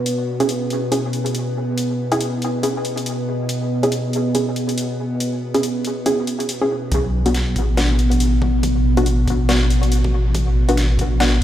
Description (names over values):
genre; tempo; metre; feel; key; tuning
deep dubstep; 140 BPM; 4/4; swing 59% on 16ths, half-time; unclear; A4 = 440 Hz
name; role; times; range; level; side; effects
overtone-sweeping drone; sustained chords; 0.0-11.4 s; B2 to B3; -22 LUFS; equal; chorus, built-in reverb
dubstep drum kit; drums; 0.1-11.3 s; hi-hat, snare drum; -27 LUFS; left 1 dB; overdrive, high-pass filter on hats, high-pass filter on snare
filtered dub chord stab; stabs; 0.4-11.3 s; B3 to G#4; -23 LUFS; equal; chorus, dub echo
deep soft wobble bass; bass; 6.9-11.4 s; A1 to B1; -17 LUFS; equal; chorus
electronic kick drum; drums; 6.9-11.1 s; none; -27 LUFS; equal; overdrive, high-pass filter on kick
room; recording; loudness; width
light reverb; played on a big sound system in a bare room, stone room reverb; -17 LUFS; side -12 dB against mid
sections
0.0-6.9 A section; 6.9-11.4 B section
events
build-up 6.9-11.4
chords
0.1 C#m; 6.9 Bm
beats
| 0.06 0.49 0.92 1.35 | 1.77 2.20 2.63 3.06 | 3.49 3.92 4.35 4.77 | 5.20 5.63 6.06 6.49 | 6.92 7.35 7.77 8.20 | 8.63 9.06 9.49 9.92 | 10.35 10.77 11.20